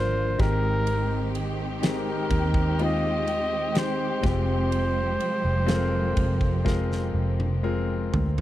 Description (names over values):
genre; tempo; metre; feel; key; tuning
pop ballad; 62 BPM; 4/4; straight; unclear; A4 = 442 Hz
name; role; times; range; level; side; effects
breathy flugelhorn; melody; 0.0-7.6 s; Bb4 to Eb5; -29 LUFS; equal; none
clear grand piano; accompaniment; 0.0-8.4 s; C3 to C5; -30 LUFS; left 4 dB; none
muted studio string section; sustained chords; 0.0-8.4 s; D3 to G4; -31 LUFS; right 2 dB; none
vintage muted fingered electric bass; bass; 0.0-8.4 s; F1 to Eb2; -27 LUFS; equal; none
huge arena drum kit; drums; 0.4-8.4 s; kick drum, ride cymbal, snare drum, toms; -28 LUFS; equal; none
room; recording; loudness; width
little or no reverb; dry, close 1970s-style studio recording; -22 LUFS; side -14 dB against mid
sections
0.0-8.4 A section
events
drum fill 6.7-8.4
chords
0.4 Abmaj7; 4.2 Fmadd9